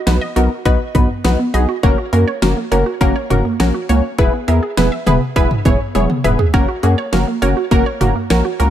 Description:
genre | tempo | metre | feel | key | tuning
synth-pop | 102 BPM | 4/4 | straight | F# mixolydian | A4 = 441 Hz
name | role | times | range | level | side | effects
resonant blip pluck | arpeggios | 0.0-8.7 s | A#3 to E5 | -22 LUFS | right 4 dB | chorus, tape echo
funky polysynth comp | accompaniment | 0.1-8.7 s | A#3 to C#5 | -18 LUFS | left 1 dB | chorus
rubbery square bass | bass | 0.1-8.7 s | E1 to F#2 | -16 LUFS | equal | none
pop drum kit | drums | 0.1-8.7 s | hi-hat, kick drum, snare drum, toms | -17 LUFS | equal | none
room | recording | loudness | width
light reverb | none | -13 LUFS | side -11 dB against mid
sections
0.0-8.7 A section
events
drum fill 5.9-6.5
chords
0.0 B; 1.8 F#; 4.2 E; 6.5 F#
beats
0.07 0.66 1.24 | 1.83 2.42 3.01 3.60 | 4.18 4.77 5.36 5.95 | 6.54 7.13 7.71 8.30

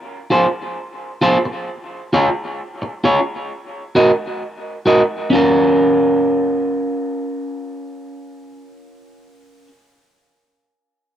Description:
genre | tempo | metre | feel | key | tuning
reggae | 66 BPM | 4/4 | straight | Bb minor | A4 = 442 Hz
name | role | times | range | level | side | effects
electric guitar at the edge of break-up | accompaniment | 0.3-9.7 s | Db4 to Eb5 | -16 LUFS | equal | cassette tape, dub echo
room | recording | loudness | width
light reverb, small room ambience | home recording on cassette | -15 LUFS | side -10 dB against mid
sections
0.0-5.3 A section; 5.3-9.0 B section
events
none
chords
0.0 Fm; 1.7 Db; 3.5 Ebm; 5.3 Bbm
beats
0.76 | 1.67 2.58 3.50 4.41 | 5.32 6.23 7.14 8.05

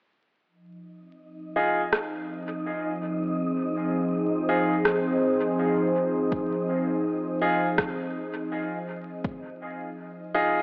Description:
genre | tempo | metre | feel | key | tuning
ambient dub | 82 BPM | 4/4 | straight | F minor | A4 = 441 Hz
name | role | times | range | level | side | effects
warm analog pad | sustained chords | 0.5-10.6 s | F3 to C5 | -27 LUFS | equal | chorus
wind-like tuned noise texture | texture | 1.3-10.6 s | Eb4 to Eb5 | -34 LUFS | equal | built-in reverb
bright upright piano | stabs | 1.6-10.6 s | Eb4 to Ab4 | -28 LUFS | equal | low-pass filter, dub echo
electronic rim click | drums | 1.9-7.9 s | none | -28 LUFS | equal | dub echo
electronic kick drum | drums | 6.3-9.4 s | none | -33 LUFS | equal | overdrive
room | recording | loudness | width
wet lush hall reverb, RT60 2.1 s | dreamy mix soaked in reverb, vinyl crackle, AM radio sound | -24 LUFS | side -28 dB against mid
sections
0.5-10.6 A section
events
filter sweep on analog synth pad 0.5-10.6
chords
0.5 Fm7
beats
| 0.47 1.20 1.93 2.66 | 3.39 4.12 4.86 5.59 | 6.32 7.05 7.78 8.52 | 9.25 9.98

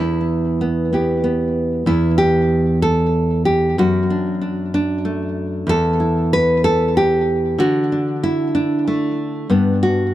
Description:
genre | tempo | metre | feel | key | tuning
folk, solo fingerstyle acoustic guitar | 63 BPM (dotted quarters) | 6/8 | straight | unclear | A4 = 440 Hz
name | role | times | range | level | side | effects
nylon-string guitar | solo | 0.0-10.1 s | E2 to B4 | -15 LUFS | equal | tape echo
room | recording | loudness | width
little or no reverb | dry, close 1970s-style studio recording | -15 LUFS | side -13 dB against mid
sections
0.0-1.9 A section; 1.9-10.1 B section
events
none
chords
0.0 Em; 1.9 N.C.; 3.8 D/F#; 5.7 A5/E; 7.6 D; 9.5 G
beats
0.91 | 1.86 2.82 | 3.77 4.73 | 5.68 6.64 | 7.59 8.55 | 9.50

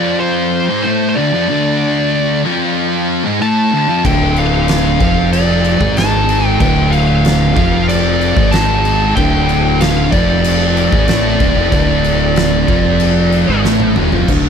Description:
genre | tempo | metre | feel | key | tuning
stoner and doom metal | 94 BPM | 4/4 | straight | D minor | A4 = 438 Hz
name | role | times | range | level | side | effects
fuzz lead guitar | melody | 0.0-13.6 s | C5 to A5 | -18 LUFS | equal | distortion, digital delay
high-gain distorted guitar | riff | 0.0-14.3 s | D2 to A3 | -21 LUFS | left 1 dB | distortion
thick fuzz guitar | riff | 0.0-14.5 s | D2 to A3 | -18 LUFS | left 12 dB | distortion
thick fuzz guitar | riff | 0.0-14.5 s | D2 to A3 | -17 LUFS | right 9 dB | distortion
growling fingered electric bass | bass | 4.0-14.5 s | D1 to A1 | -18 LUFS | equal | overdrive
oversized low-tuned drum kit | drums | 4.0-14.4 s | crash cymbal, kick drum, snare drum, toms | -17 LUFS | equal | none
room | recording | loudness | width
light reverb | none | -11 LUFS | side -7 dB against mid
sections
0.0-14.3 A section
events
drum fill 13.6-14.3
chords
0.0 Dm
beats
0.21 0.85 | 1.49 2.13 2.77 3.41 | 4.05 4.69 5.33 5.97 | 6.61 7.25 7.89 8.53 | 9.17 9.81 10.45 11.09 | 11.72 12.36 13.01 13.64 | 14.29

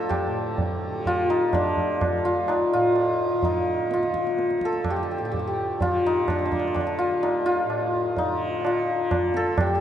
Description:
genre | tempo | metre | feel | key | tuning
indian classical, Hindustani | 126 BPM | 5/4 | straight | D raga bhairavi | A4 = 440 Hz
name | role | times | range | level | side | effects
santur | melody | 0.0-9.8 s | D4 to A4 | -23 LUFS | left 1 dB | tape echo
tanpura | drone | 0.0-9.8 s | D2 to D3 | -34 LUFS | right 2 dB | none
tabla | percussion | 0.1-9.8 s | none | -29 LUFS | right 2 dB | none
room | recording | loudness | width
wet cathedral reverb, RT60 5.3 s | in a vast, echoing space, nothing above 10.3 kHz | -22 LUFS | side -10 dB against mid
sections
0.0-9.8 A section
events
none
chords
none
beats
| 0.10 0.58 1.05 1.53 2.01 | 2.49 2.96 3.44 3.92 4.39 | 4.87 5.34 5.81 6.29 6.76 | 7.23 7.71 8.18 8.65 9.12 | 9.59

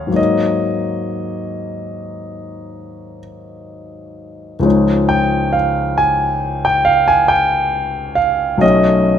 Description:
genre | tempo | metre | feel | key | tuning
classical, impressionist solo piano | 38-47 BPM (dotted quarters) | 9/8 | rubato | Db major | A4 = 441 Hz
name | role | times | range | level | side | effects
warm concert grand piano | solo | 0.0-9.2 s | Cb2 to Ab5 | -15 LUFS | equal | none
room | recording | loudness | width
light reverb | close, detailed microphones | -13 LUFS | side -9 dB against mid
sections
0.0-4.6 A section; 4.6-9.2 A section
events
none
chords
0.2 Ab9sus4; 4.6 Dbadd9; 8.6 Cb9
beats
| 0.18 1.73 3.18 | 4.65 6.00 7.34 | 8.63

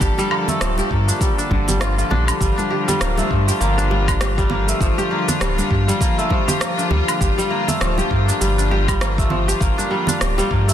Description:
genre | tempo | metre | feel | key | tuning
organic downtempo | 100 BPM | 4/4 | swing 58% on 16ths | G minor | A4 = 439 Hz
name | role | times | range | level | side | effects
warm chamber string section | sustained chords | 0.0-10.7 s | D3 to A4 | -24 LUFS | left 3 dB | sidechain pumping
kora | arpeggios | 0.0-10.7 s | D3 to G4 | -21 LUFS | equal | ping-pong delay
warm sub bass | bass | 0.0-10.7 s | D1 to G2 | -20 LUFS | equal | tube saturation
electronic kick drum | drums | 0.0-10.6 s | none | -21 LUFS | equal | none
electronic shaker, woodblock and rim click | drums | 0.0-10.7 s | none | -25 LUFS | right 1 dB | soft clipping on snare
congas | percussion | 0.2-10.5 s | none | -28 LUFS | right 2 dB | none
room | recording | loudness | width
light reverb, studio ambience | dense, heavily limited modern master | -16 LUFS | side -10 dB against mid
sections
0.0-10.7 A section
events
none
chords
0.0 Gm7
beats
| 0.01 0.61 1.21 1.81 | 2.41 3.01 3.61 4.21 | 4.81 5.41 6.01 6.61 | 7.21 7.81 8.41 9.01 | 9.61 10.21

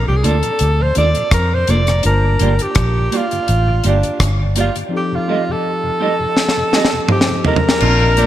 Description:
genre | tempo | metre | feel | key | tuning
lovers rock reggae | 83 BPM | 4/4 | swing 54% on 16ths | unclear | A4 = 439 Hz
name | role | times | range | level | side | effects
warm alto saxophone | melody | 0.0-8.3 s | D4 to D5 | -18 LUFS | equal | tape echo
tine electric piano | accompaniment | 0.0-8.3 s | F3 to A5 | -26 LUFS | left 3 dB | none
vintage muted fingered electric bass | bass | 0.0-8.3 s | F1 to F2 | -15 LUFS | equal | none
tonewheel organ | accompaniment | 0.1-8.3 s | F2 to F4 | -27 LUFS | left 2 dB | chorus vibrato, slow rotary speaker
mellow electric guitar | stabs | 0.2-8.3 s | Bb3 to Eb5 | -23 LUFS | right 6 dB | dub echo
deep reggae drum kit | drums | 0.2-8.3 s | crash cymbal, hi-hat, kick drum, rim click, snare drum, toms | -17 LUFS | equal | gated reverb
clear horn section | second line | 7.8-8.3 s | Bb3 to G4 | -21 LUFS | left 1 dB | none
room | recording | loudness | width
light reverb | none | -13 LUFS | side -12 dB against mid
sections
0.0-7.8 A section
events
alto saxophone solo 0.0-7.8; drum fill 6.4-7.8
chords
0.0 Bbmaj7; 2.0 Gm7; 4.9 F9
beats
0.60 1.32 | 2.04 2.76 3.48 4.20 | 4.92 5.64 6.36 7.08 | 7.80

